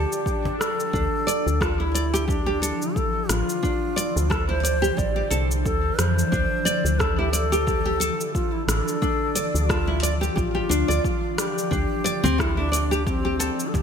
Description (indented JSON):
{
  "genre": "organic downtempo",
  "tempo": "89 BPM",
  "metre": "4/4",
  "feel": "swing 56% on 16ths",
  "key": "D minor",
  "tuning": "A4 = 441 Hz",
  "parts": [
    { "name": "bright bass bansuri", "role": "melody", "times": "0.0-13.8 s", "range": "C4 to D5", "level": "-27 LUFS", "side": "left 1 dB", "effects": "ping-pong delay" },
    { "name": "ethereal airy pad", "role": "sustained chords", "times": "0.0-13.8 s", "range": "D3 to D5", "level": "-30 LUFS", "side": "left 1 dB", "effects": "ensemble chorus, built-in reverb, phaser, sidechain pumping" },
    { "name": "nylon-string guitar", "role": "arpeggios", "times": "0.0-13.6 s", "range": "C4 to D5", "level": "-27 LUFS", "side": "equal", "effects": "lush chorus, ping-pong delay" },
    { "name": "woody FM bass", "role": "bass", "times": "0.0-13.5 s", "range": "A1 to F2", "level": "-25 LUFS", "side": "equal", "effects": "tube saturation, sidechain pumping" },
    { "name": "swell", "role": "sound effects", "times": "0.0-0.9 s", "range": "none", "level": "-34 LUFS", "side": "left 2 dB", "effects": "none" },
    { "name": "deep house drum kit", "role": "drums", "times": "0.1-13.8 s", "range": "cabasa, hi-hat, rim click", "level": "-29 LUFS", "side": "equal", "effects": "studio reverb, gated reverb" },
    { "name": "electronic kick drum", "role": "drums", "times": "0.3-13.8 s", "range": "none", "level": "-28 LUFS", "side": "equal", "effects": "studio reverb" },
    { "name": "cajon", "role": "percussion", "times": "0.5-0.6, 12.1-13.8 s", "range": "none", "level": "-32 LUFS", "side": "left 1 dB", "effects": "none" }
  ],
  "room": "moderate plate reverb, RT60 3.0 s",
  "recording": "bright 1980s-style digital production",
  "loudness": "-20 LUFS",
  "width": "side -7 dB against mid",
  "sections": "0.9-13.8 A section",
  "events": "swell 0.0-0.9",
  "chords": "0.0 Dm; 0.9 Dm7",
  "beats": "0.26 | 0.93 1.61 2.28 2.95 | 3.63 4.30 4.98 5.65 | 6.33 7.00 7.67 8.35 | 9.02 9.70 10.37 11.04 | 11.72 12.39 13.07 13.74"
}